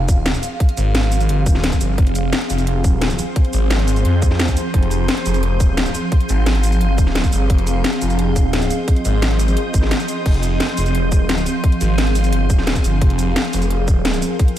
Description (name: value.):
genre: dark technical drum and bass.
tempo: 174 BPM.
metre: 4/4.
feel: straight.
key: F minor.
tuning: A4 = 440 Hz.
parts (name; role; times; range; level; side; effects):
swarming drone; sustained chords; 0.0-14.6 s; F3 to F5; -22 LUFS; right 1 dB; built-in reverb, sidechain pumping.
phased detuned saw bass; bass; 0.0-14.2 s; Eb1 to F2; -18 LUFS; equal; phaser, overdrive, sidechain pumping.
drum and bass drum kit; drums; 0.1-14.6 s; cabasa, crash cymbal, hi-hat, snare drum; -23 LUFS; left 1 dB; overdrive, studio reverb.
electronic kick drum; drums; 0.1-14.5 s; none; -15 LUFS; equal; studio reverb.
room: light reverb.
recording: none.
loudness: -15 LUFS.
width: side -12 dB against mid.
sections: 0.0-14.6 A section.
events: break 9.9-10.3.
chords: 0.0 Fm.